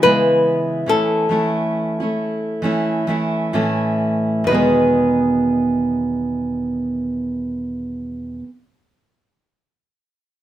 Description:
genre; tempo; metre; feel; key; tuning
acoustic pop; 63-72 BPM; 4/4; swing 60% on 16ths; E major; A4 = 439 Hz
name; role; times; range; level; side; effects
nylon-string guitar; melody; 0.0-8.4 s; A4 to B4; -16 LUFS; left 1 dB; none
fingerpicked steel-string acoustic guitar; accompaniment; 0.0-8.5 s; E2 to G#4; -18 LUFS; right 1 dB; none
room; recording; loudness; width
moderate small room reverb, RT60 0.6 s; minimal, uncompressed stereo recording; -17 LUFS; side -12 dB against mid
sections
0.0-4.5 A section; 4.5-8.3 B section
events
slowing down 0.0-4.5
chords
0.0 C#m7; 0.9 A; 4.5 Emaj7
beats
0.03 | 0.87 1.74 2.62 3.53 | 4.47 5.43 6.39 7.34

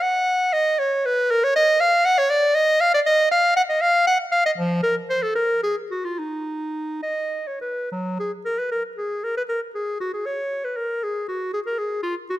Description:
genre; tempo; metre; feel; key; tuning
classical, baroque-style fantasia for unaccompanied clarinet; 78 BPM (dotted quarters); 6/8; rubato; Eb minor; A4 = 439 Hz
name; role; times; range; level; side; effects
clear clarinet; solo; 0.0-12.4 s; F3 to Gb5; -19 LUFS; equal; none
room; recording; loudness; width
moderate recital hall reverb, RT60 1.7 s; close, detailed microphones; -19 LUFS; side -14 dB against mid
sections
0.0-7.9 A section; 7.9-12.4 A section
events
none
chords
none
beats
| 0.01 0.79 | 1.55 2.31 | 3.06 3.82 | 4.58 5.36 | 6.19 7.03 | 7.91 8.72 | 9.49 10.26 | 11.04 11.80

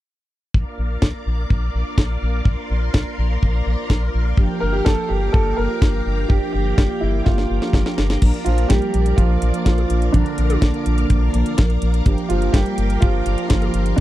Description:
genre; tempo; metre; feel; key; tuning
italo disco; 125 BPM; 4/4; straight; unclear; A4 = 440 Hz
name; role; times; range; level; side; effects
string machine, full ensemble; sustained chords; 0.5-14.0 s; Bb4 to D6; -29 LUFS; left 1 dB; ensemble chorus
round analog bass; bass; 0.5-14.0 s; G1 to Bb1; -20 LUFS; equal; none
kick drum; drums; 0.5-14.0 s; none; -17 LUFS; equal; none
house drum kit; drums; 1.0-14.0 s; crash cymbal, hi-hat, snare drum, toms; -24 LUFS; left 1 dB; none
mellow synth brass; stabs; 4.4-14.0 s; F3 to Bb4; -26 LUFS; right 1 dB; chorus, cassette tape
dark baby grand piano; melody; 4.6-14.0 s; D3 to Bb4; -23 LUFS; right 3 dB; tape echo
room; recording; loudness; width
little or no reverb; dry, close 1970s-style studio recording; -16 LUFS; side -15 dB against mid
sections
0.5-8.2 A section; 8.2-14.0 B section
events
drum fill 7.3-8.2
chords
0.5 Bb; 4.4 Gm7; 8.2 Bb; 12.1 Gm7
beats
| 0.54 1.02 1.50 1.98 | 2.46 2.94 3.42 3.90 | 4.38 4.86 5.34 5.82 | 6.30 6.78 7.26 7.74 | 8.22 8.70 9.18 9.66 | 10.14 10.62 11.10 11.58 | 12.06 12.54 13.02 13.50 | 13.98

